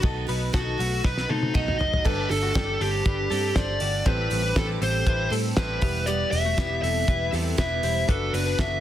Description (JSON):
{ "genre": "jangly indie pop", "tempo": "119 BPM", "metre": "4/4", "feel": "straight", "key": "unclear", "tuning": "A4 = 440 Hz", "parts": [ { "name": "picked twelve-string acoustic guitar", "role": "accompaniment", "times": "0.0-8.8 s", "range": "E2 to G4", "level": "-34 LUFS", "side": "right 11 dB", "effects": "plate reverb" }, { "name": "direct-recorded clean electric guitar", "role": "arpeggios", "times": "0.0-8.8 s", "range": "F#3 to D5", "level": "-32 LUFS", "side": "left 5 dB", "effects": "analog chorus, plate reverb" }, { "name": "vintage muted picked electric bass", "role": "bass", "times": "0.0-8.8 s", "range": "E1 to B2", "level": "-28 LUFS", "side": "equal", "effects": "none" }, { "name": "cloth-damped thuddy drum kit", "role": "drums", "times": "0.0-8.7 s", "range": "crash cymbal, hi-hat, kick drum, snare drum, toms", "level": "-27 LUFS", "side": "equal", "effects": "none" }, { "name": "high-gain lead guitar", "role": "melody", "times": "0.5-8.8 s", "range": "D#4 to E5", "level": "-27 LUFS", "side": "equal", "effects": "distortion, plate reverb" }, { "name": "warm upright piano", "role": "accompaniment", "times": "2.1-8.8 s", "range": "C4 to B4", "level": "-37 LUFS", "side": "left 4 dB", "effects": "plate reverb" } ], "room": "light reverb", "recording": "dense, heavily limited modern master", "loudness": "-22 LUFS", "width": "side -12 dB against mid", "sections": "0.0-2.1 A section; 2.1-8.8 B section", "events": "drum fill 1.0-2.1", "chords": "0.0 B7; 2.1 Gsus2; 4.1 Am7; 5.8 Em; 8.1 Bm/F#", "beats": "| 0.04 0.54 1.04 1.55 | 2.05 2.56 3.06 3.56 | 4.06 4.57 5.07 5.57 | 6.08 6.58 7.08 7.58 | 8.08 8.59" }